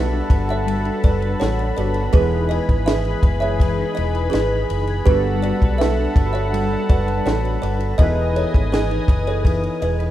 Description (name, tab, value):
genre	indie pop, bedroom pop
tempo	82 BPM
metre	4/4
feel	straight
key	E major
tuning	A4 = 440 Hz
part	kalimba	second line	0.0-10.0 s	G4 to E5	-25 LUFS	right 4 dB	lush chorus, analog delay
part	clean electric guitar	accompaniment	0.0-10.1 s	E3 to B4	-26 LUFS	left 3 dB	ensemble chorus, warbly pitch drift
part	warm analog keys	accompaniment	0.0-10.1 s	G3 to B4	-29 LUFS	right 2 dB	chorus, phaser, cassette tape
part	warm analog pad	sustained chords	0.0-10.1 s	G#4 to D#6	-26 LUFS	left 1 dB	chorus
part	vintage muted fingered electric bass	bass	0.0-10.1 s	E1 to B1	-22 LUFS	equal	none
part	compact cocktail drum kit	drums	0.3-10.1 s	kick drum, ride cymbal, snare drum	-17 LUFS	equal	none
room	small room ambience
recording	rough home demo mix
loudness	-16 LUFS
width	side -13 dB against mid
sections	0.0-10.1 A section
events	none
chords	0.0 Gmaj9; 2.1 Emaj7; 5.1 Gmaj9; 8.0 Emaj7